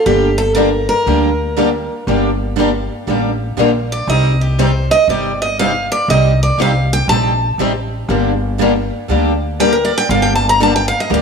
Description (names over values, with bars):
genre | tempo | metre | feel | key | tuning
acoustic string swing (jazz manouche) | 120 BPM | 4/4 | swing 64% on 8ths | G minor | A4 = 444 Hz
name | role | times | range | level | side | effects
picked steel-string acoustic guitar | melody | 0.0-11.2 s | G4 to Bb5 | -15 LUFS | right 1 dB | none
picked acoustic archtop guitar | accompaniment | 0.1-11.2 s | C3 to G4 | -19 LUFS | left 10 dB | none
picked steel-string acoustic guitar | accompaniment | 0.1-11.2 s | C3 to G4 | -20 LUFS | right 11 dB | none
upright bass | bass | 0.1-11.2 s | G1 to D2 | -18 LUFS | equal | none
room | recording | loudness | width
moderate echo chamber reverb, RT60 2.0 s, small room ambience | 1960s-style stereo with parts hard left and right | -12 LUFS | side -5 dB against mid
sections
0.0-11.2 A section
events
steel-string acoustic guitar solo 0.0-11.2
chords
0.0 Gm; 4.1 Cm; 8.1 Gm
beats
| 0.06 0.56 1.06 1.57 | 2.07 2.57 3.07 3.58 | 4.08 4.58 5.08 5.59 | 6.09 6.59 7.09 7.59 | 8.10 8.60 9.10 9.60 | 10.10 10.61 11.11